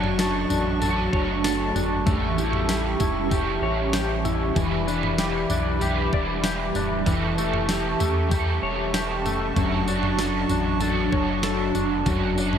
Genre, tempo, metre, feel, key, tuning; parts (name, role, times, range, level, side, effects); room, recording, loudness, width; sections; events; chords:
dream pop; 96 BPM; 4/4; straight; A4 = 440 Hz
raw garage guitar; accompaniment; 0.0-12.6 s; A2 to C#5; -27 LUFS; right 6 dB; overdrive, harmonic tremolo, ensemble chorus
hollow soft pad; sustained chords; 0.0-12.6 s; D4 to D6; -28 LUFS; equal; chorus
semi-hollow electric guitar; arpeggios; 0.0-12.6 s; F#2 to D5; -27 LUFS; left 5 dB; analog chorus, ping-pong delay
saturated sub bass; bass; 0.0-12.6 s; D1 to E2; -29 LUFS; equal
crisp 8-bit digital drum machine; drums; 0.0-12.6 s; kick drum, snare drum, tambourine, toms; -27 LUFS; right 1 dB
moderate lush hall reverb, RT60 2.6 s; bright 1980s-style digital production; -21 LUFS; side -8 dB against mid
0.0-12.6 A section
0.0 Dmaj7/F#; 2.1 A7; 4.6 Em7; 7.1 A7/E; 9.6 Dmaj7